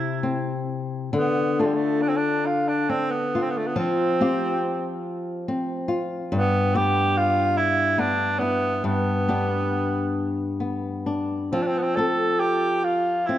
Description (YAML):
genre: celtic folk, Celtic slow air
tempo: 69 BPM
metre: 3/4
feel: uneven beats, rubato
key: D dorian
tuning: A4 = 440 Hz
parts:
  - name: warm tenor saxophone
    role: melody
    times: 0.0-13.4 s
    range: G3 to A4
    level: -24 LUFS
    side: right 2 dB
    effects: none
  - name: flamenco guitar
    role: accompaniment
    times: 0.0-13.4 s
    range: G2 to A4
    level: -24 LUFS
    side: left 2 dB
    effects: none
room: moderate concert hall reverb, RT60 1.9 s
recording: dark, warm production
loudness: -21 LUFS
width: side -12 dB against mid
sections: 0.0-1.1 A section; 1.1-13.4 B section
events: none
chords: 0.0 C; 1.1 Dm; 3.8 Fsus2; 6.3 Em/G; 8.8 G; 11.5 F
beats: 0.21 | 1.14 2.02 2.89 | 3.77 4.63 5.48 | 6.32 7.15 7.98 | 8.85 9.71 10.61 | 11.52 12.41 13.29